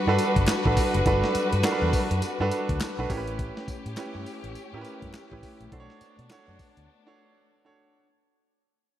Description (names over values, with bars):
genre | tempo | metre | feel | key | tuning
R&B, new jack swing | 103 BPM | 4/4 | swing 61% on 16ths | B minor | A4 = 441 Hz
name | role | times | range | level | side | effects
warm baby grand piano | accompaniment | 0.0-8.1 s | C#4 to C#5 | -28 LUFS | right 3 dB | none
warm studio string section | sustained chords | 0.0-8.0 s | G3 to B4 | -31 LUFS | left 3 dB | none
vintage muted fingered electric bass | bass | 0.1-6.9 s | F#1 to B2 | -28 LUFS | equal | none
dusty soul sampler-style drum kit | drums | 0.2-6.9 s | handclaps, hi-hat, kick drum, snare drum, tambourine | -28 LUFS | equal | none
group handclap | percussion | 0.5-6.5 s | none | -42 LUFS | left 6 dB | none
room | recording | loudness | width
moderate lush hall reverb, RT60 2.5 s | dreamy mix soaked in reverb | -23 LUFS | side -12 dB against mid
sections
0.0-8.1 A section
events
fade-out 0.0-8.1; break 6.9-8.1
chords
0.0 Gmaj7; 3.1 A7; 5.7 Bm9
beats
0.48 | 1.06 1.64 2.23 2.81 | 3.39 3.97 4.56 5.14 | 5.72 6.30 6.89 7.47